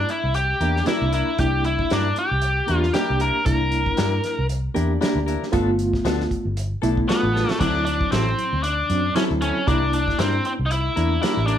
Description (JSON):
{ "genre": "straight-eighth soul blues", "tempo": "116 BPM", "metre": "4/4", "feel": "swing 55% on 16ths", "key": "unclear", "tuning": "A4 = 440 Hz", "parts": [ { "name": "biting lead guitar", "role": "melody", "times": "0.0-11.6 s", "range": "B3 to Bb4", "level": "-23 LUFS", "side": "left 1 dB", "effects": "overdrive" }, { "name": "reed electric piano", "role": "accompaniment", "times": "0.0-11.6 s", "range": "F#3 to G4", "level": "-25 LUFS", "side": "right 1 dB", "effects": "fast tremolo" }, { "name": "vintage muted fingered electric bass", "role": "bass", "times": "0.0-11.6 s", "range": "G1 to G2", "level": "-24 LUFS", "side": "equal", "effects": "none" }, { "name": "warm soul drum kit", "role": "drums", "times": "0.1-11.6 s", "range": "crash cymbal, hi-hat, kick drum, snare drum", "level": "-27 LUFS", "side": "equal", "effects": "none" }, { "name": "direct-recorded clean electric guitar", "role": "stabs", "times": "0.6-11.6 s", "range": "F3 to Bb4", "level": "-29 LUFS", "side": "left 7 dB", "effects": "none" } ], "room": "light reverb", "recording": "band playing live in one room", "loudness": "-19 LUFS", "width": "side -10 dB against mid", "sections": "0.0-11.6 A section", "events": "drum fill 7.3", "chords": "0.0 C9; 5.5 G9; 7.6 D9; 9.7 C9" }